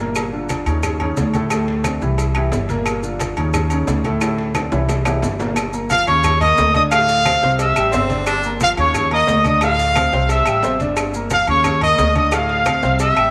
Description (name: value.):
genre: latin, salsa.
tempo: 178 BPM.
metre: 4/4.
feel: straight.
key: unclear.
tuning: A4 = 440 Hz.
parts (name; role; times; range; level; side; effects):
clear baby grand piano; accompaniment; 0.0-13.3 s; A2 to Bb5; -25 LUFS; equal; none.
upright bass; bass; 0.0-13.3 s; G1 to Eb2; -24 LUFS; equal; none.
agogo bells and timbales; percussion; 0.2-13.3 s; none; -28 LUFS; equal; none.
claves; percussion; 0.2-13.3 s; none; -32 LUFS; equal; none.
congas; percussion; 0.2-13.3 s; none; -30 LUFS; equal; none.
cowbell and bongos; percussion; 0.2-13.2 s; none; -33 LUFS; equal; none.
maracas; percussion; 0.2-13.2 s; none; -38 LUFS; equal; none.
bright trumpet section; melody; 5.9-13.3 s; Db5 to E6; -18 LUFS; equal; tape echo.
bright baritone saxophone; second line; 7.9-8.5 s; C4 to D4; -26 LUFS; equal; none.
room: moderate echo chamber reverb, RT60 2.8 s.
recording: none.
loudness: -17 LUFS.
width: mono.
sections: 0.0-5.6 A section; 5.6-13.3 B section.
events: drum fill 4.2-5.6.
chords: 0.2 Gm7; 0.8 Aadd11; 1.5 D5; 2.2 C7; 2.9 Gm7; 3.5 Aadd11; 4.2 D5; 4.9 C7; 5.6 Gm7; 6.2 Eb5; 6.9 Dm7; 7.6 C; 8.3 Gm7; 8.9 Eb5; 9.6 Dm7; 10.3 C; 11.0 Gm7; 11.7 Eb5; 12.3 Dm7.